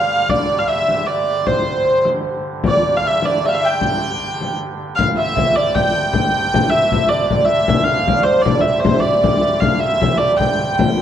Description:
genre	medieval dance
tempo	103 BPM (dotted quarters)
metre	6/8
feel	straight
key	unclear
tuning	A4 = 440 Hz
part	warm hurdy-gurdy	melody	0.0-11.0 s	C5 to G5	-17 LUFS	equal	none
part	concert harp	second line	0.0-11.0 s	C5 to A5	-22 LUFS	right 3 dB	none
part	pipe organ, soft reed	drone	0.0-11.0 s	G2 to D3	-28 LUFS	right 3 dB	none
part	frame drum	percussion	0.3-11.0 s	none	-20 LUFS	left 3 dB	none
room	wet recital hall reverb, RT60 1.6 s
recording	dark, warm production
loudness	-14 LUFS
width	side -10 dB against mid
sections	0.0-5.0 A section; 5.0-11.0 B section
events	none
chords	none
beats	| 0.30 0.88 | 1.47 2.05 | 2.64 3.22 | 3.80 4.39 | 4.97 5.55 | 6.13 6.72 | 7.30 7.88 | 8.46 9.04 | 9.62 10.20 | 10.78

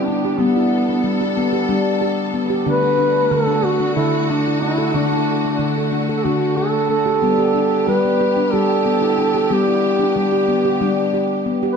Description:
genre	world meditative, meditative tuned percussion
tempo	184 BPM (eighths)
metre	7/8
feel	straight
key	G major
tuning	A4 = 440 Hz
part	mellow duduk	melody	0.0-11.8 s	B3 to B4	-19 LUFS	right 1 dB	plate reverb, ping-pong delay
part	rich symphonic string section	sustained chords	0.0-11.8 s	D3 to A4	-25 LUFS	equal	none
part	handpan	arpeggios	0.0-11.8 s	D3 to A4	-18 LUFS	left 1 dB	none
room	wet studio reverb, RT60 0.7 s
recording	none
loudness	-15 LUFS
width	side -6 dB against mid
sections	0.0-11.8 A section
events	none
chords	0.0 G; 2.7 D; 7.2 G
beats	0.07 | 0.39 0.71 1.04 1.36 1.69 2.02 2.34 | 2.67 2.99 3.32 3.64 3.97 4.29 4.62 | 4.95 5.27 5.60 5.92 6.25 6.58 6.90 | 7.23 7.55 7.88 8.21 8.53 8.86 9.19 | 9.51 9.84 10.16 10.49 10.82 11.14 11.47

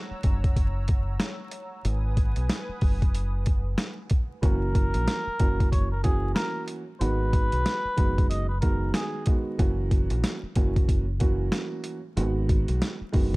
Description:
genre	hip hop, boom-bap hip-hop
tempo	93 BPM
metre	4/4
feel	swing 60% on 16ths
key	unclear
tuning	A4 = 441 Hz
part	warm analog pad	sustained chords	0.0-4.4 s	B4 to E6	-40 LUFS	right 1 dB	chorus, tremolo, high-pass filter, low-pass filter
part	deep dub fingered electric bass	bass	0.1-13.4 s	F#1 to B1	-27 LUFS	equal	none
part	boom bap sampler-style drum kit	drums	0.2-13.4 s	hi-hat, kick drum, snare drum	-24 LUFS	equal	none
part	trumpet with cup mute	melody	4.4-9.2 s	G#4 to D#5	-31 LUFS	equal	high-pass filter, low-pass filter, slapback echo
part	dark upright piano	accompaniment	4.4-13.4 s	D#3 to F#4	-31 LUFS	right 2 dB	cassette tape, high-pass filter, low-pass filter
room	digital ambience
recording	dark, warm production, vinyl crackle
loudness	-23 LUFS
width	side -23 dB against mid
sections	0.0-4.4 A section; 4.4-13.4 B section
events	break 0.0-4.4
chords	0.0 F#7; 1.8 G#m7; 4.4 F#7; 7.0 G#m7; 9.6 F#7; 12.2 G#m7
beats	0.56 1.20 | 1.85 2.49 3.14 3.78 | 4.43 5.08 5.72 6.37 | 7.01 7.66 8.30 8.95 | 9.59 10.24 10.88 11.53 | 12.17 12.82

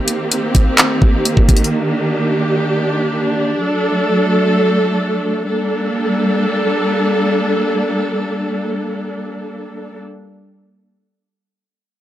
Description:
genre	hip hop, trap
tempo	free time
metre	none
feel	none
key	G harmonic minor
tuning	A4 = 440 Hz
part	warm symphonic string section	sustained chords	0.0-10.0 s	Eb3 to A4	-16 LUFS	equal	none
part	trap drum kit	drums	0.1-1.7 s	handclaps, hi-hat, kick drum	-12 LUFS	equal	none
room	digital ambience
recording	dry, gritty hardware recording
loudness	-14 LUFS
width	side -12 dB against mid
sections	0.0-5.5 A section; 5.5-9.2 B section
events	none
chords	0.0 Cm7; 1.7 Ebmaj7; 3.6 D; 5.5 Gmadd9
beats	free time

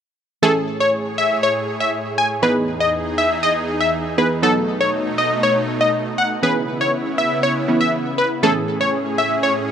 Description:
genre	pop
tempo	120 BPM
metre	4/4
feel	straight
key	unclear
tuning	A4 = 438 Hz
part	plucky unison lead	melody	0.4-9.5 s	A4 to G#5	-18 LUFS	left 1 dB	tape echo
part	analog pluck	accompaniment	0.4-9.7 s	E3 to A4	-21 LUFS	right 3 dB	chorus
part	supersaw pad	sustained chords	0.4-9.7 s	E2 to C#5	-23 LUFS	right 1 dB	none
room	moderate plate reverb, RT60 2.9 s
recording	none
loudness	-16 LUFS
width	side -8 dB against mid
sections	0.4-9.7 A section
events	none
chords	0.4 Amaj7; 2.4 Emaj7; 4.4 B7; 6.4 C#m7; 8.4 Amaj7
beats	| 0.43 0.93 1.43 1.93 | 2.43 2.93 3.43 3.93 | 4.43 4.93 5.43 5.93 | 6.43 6.93 7.43 7.93 | 8.43 8.93 9.43

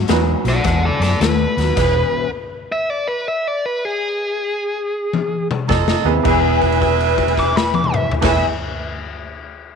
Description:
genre	electric blues shuffle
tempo	107 BPM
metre	4/4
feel	swing 65% on 8ths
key	E major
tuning	A4 = 435 Hz
part	electric guitar through a small old amp	riff	0.0-2.3, 5.7-8.4 s	E2 to G#4	-22 LUFS	left 12 dB	ensemble chorus
part	vintage muted fingered electric bass	bass	0.0-2.0, 5.7-8.4 s	E1 to F#2	-20 LUFS	equal	none
part	clear grand piano	accompaniment	0.1-0.4, 6.1-8.4 s	E2 to B4	-22 LUFS	right 13 dB	none
part	raw garage drum kit	drums	0.1-8.4 s	crash cymbal, hi-hat, kick drum, snare drum, toms	-22 LUFS	left 4 dB	none
part	biting overdriven guitar	melody	0.5-8.4 s	G#4 to D6	-21 LUFS	equal	slapback echo
part	clear saxophone section	stabs	1.8-2.2, 5.7-8.4 s	Eb4 to B4	-24 LUFS	right 10 dB	none
part	clear harmonica	second line	5.7-8.4 s	A4 to E5	-24 LUFS	right 6 dB	overdrive
room	moderate spring reverb, RT60 2.5 s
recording	1960s-style stereo with parts hard left and right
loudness	-15 LUFS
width	side -6 dB against mid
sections	0.0-6.2 A section; 6.2-8.5 B section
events	stop 1.8-5.7; drum fill 5.1-6.2; held note 6.2-8.2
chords	0.0 B; 1.8 E; 5.7 F7; 6.2 E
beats	0.08 0.64 1.20 | 1.76 2.33 2.89 3.45 | 4.01 4.57 5.13 5.69 | 6.25 6.81 7.37 7.93

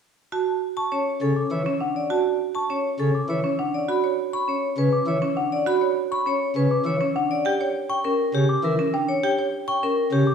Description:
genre	classical, minimalist pattern music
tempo	101 BPM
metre	3/4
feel	straight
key	D major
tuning	A4 = 440 Hz
part	vibraphone with hard mallets	melody	0.3-10.3 s	G4 to B5	-25 LUFS	left 4 dB	none
part	marimba with hard mallets	arpeggios	0.3-10.0 s	C#4 to C#5	-26 LUFS	right 6 dB	none
part	celesta	arpeggios	0.8-10.3 s	F#5 to D6	-29 LUFS	left 1 dB	none
part	chamber organ, principal chorus	accompaniment	1.2-10.2 s	C#3 to E3	-24 LUFS	equal	none
room	wet recital hall reverb, RT60 1.3 s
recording	heard from further back in the room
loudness	-21 LUFS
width	side -6 dB against mid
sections	0.3-10.3 A section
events	none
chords	0.3 Dmaj7; 7.5 G5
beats	| 0.32 0.92 1.51 | 2.10 2.70 3.29 | 3.89 4.48 5.07 | 5.67 6.26 6.86 | 7.45 8.04 8.64 | 9.23 9.83

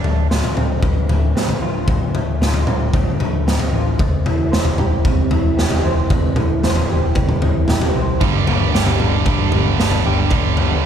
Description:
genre	quiet-loud alternative rock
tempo	114 BPM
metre	4/4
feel	straight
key	D dorian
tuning	A4 = 440 Hz
part	electric guitar through a small old amp	arpeggios	0.0-10.9 s	D2 to C5	-23 LUFS	right 2 dB	ensemble chorus, slapback echo
part	tight distorted guitar	riff	0.0-0.3, 8.2-10.9 s	G2 to D4	-20 LUFS	right 10 dB	distortion
part	raw garage drum kit	drums	0.0-10.7 s	kick drum, snare drum, toms	-17 LUFS	left 1 dB	none
part	hollow-body short-scale picked electric bass	bass	0.1-10.7 s	D1 to B1	-21 LUFS	equal	none
room	light reverb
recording	none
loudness	-15 LUFS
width	side -8 dB against mid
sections	0.0-10.9 A section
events	none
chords	0.0 Dm7; 4.0 C/E; 8.2 G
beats	0.30 0.83 1.35 | 1.88 2.41 2.94 3.46 | 3.99 4.52 5.05 5.58 | 6.10 6.63 7.16 7.68 | 8.21 8.74 9.27 9.79 | 10.32 10.84

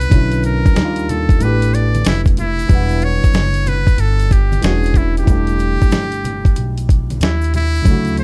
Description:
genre	hip hop, jazz-hop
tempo	93 BPM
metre	4/4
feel	swing 66% on 16ths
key	unclear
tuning	A4 = 440 Hz
part	trumpet with metal mute	melody	0.0-8.2 s	E4 to D5	-25 LUFS	equal	plate reverb
part	dark concert grand piano	accompaniment	0.0-8.2 s	C#3 to F#5	-24 LUFS	equal	plate reverb
part	upright bass	bass	0.0-8.2 s	E1 to D#2	-20 LUFS	equal	none
part	dusty soul sampler-style drum kit	drums	0.0-8.2 s	hi-hat, kick drum, snare drum	-16 LUFS	equal	none
part	tube shaker and congas	percussion	0.0-8.2 s	none	-31 LUFS	equal	none
room	light reverb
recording	dark, warm production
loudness	-15 LUFS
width	mono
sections	0.0-2.7 A section; 2.7-8.2 B section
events	none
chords	0.1 Bmadd9; 0.8 D#maj9; 1.4 A9sus4; 2.7 Em9; 4.6 E13; 5.3 A7sus4/E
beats	| 0.11 0.76 1.40 2.05 | 2.69 3.34 3.98 4.63 | 5.28 5.92 6.57 7.21 | 7.86

